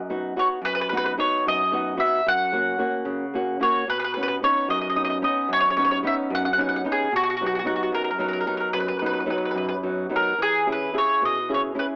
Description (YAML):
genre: italian folk, Italian serenade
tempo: 74 BPM (dotted quarters)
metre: 6/8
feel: straight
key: B major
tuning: A4 = 440 Hz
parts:
  - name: mandolin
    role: melody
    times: 0.0-11.8 s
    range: F#4 to F#5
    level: -25 LUFS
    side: equal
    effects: cassette tape
  - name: flamenco guitar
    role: accompaniment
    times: 0.0-12.0 s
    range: F#2 to G#4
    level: -29 LUFS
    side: equal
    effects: cassette tape
room: moderate spring reverb, RT60 1.4 s, small room ambience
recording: home recording on cassette, AM radio sound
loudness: -24 LUFS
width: mono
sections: 0.0-10.4 A section; 10.4-12.0 B section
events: none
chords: 0.0 B/F#; 2.3 F#; 3.9 Badd9; 7.1 B; 10.4 E6